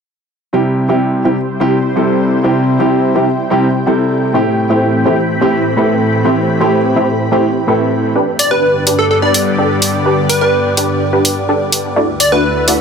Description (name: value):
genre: EDM, festival progressive house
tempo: 126 BPM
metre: 4/4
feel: straight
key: unclear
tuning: A4 = 439 Hz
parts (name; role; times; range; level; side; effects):
- dark baby grand piano; accompaniment; 0.5-8.1 s; A2 to A4; -15 LUFS; equal; dub echo
- lush unison pad; sustained chords; 1.2-12.8 s; D2 to B5; -18 LUFS; left 1 dB; chorus, phaser
- supersaw stab; riff; 0.5-12.8 s; A3 to D5; -15 LUFS; right 1 dB; wide subtle chorus, low-pass filter, dub echo
- plucky unison lead; melody; 8.4-12.8 s; A4 to D5; -15 LUFS; equal; dub echo
- electronic hi-hat; drums; 8.4-12.8 s; none; -14 LUFS; equal; overdrive
room: light reverb, digital ambience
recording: none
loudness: -11 LUFS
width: side -6 dB against mid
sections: 0.5-12.8 A section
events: none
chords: 0.5 C; 4.3 Am7; 8.2 G; 12.0 Dadd9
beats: | 0.54 1.01 1.49 1.96 | 2.44 2.92 3.39 3.87 | 4.34 4.82 5.30 5.77 | 6.25 6.72 7.20 7.68 | 8.15 8.63 9.11 9.58 | 10.06 10.54 11.01 11.49 | 11.96 12.44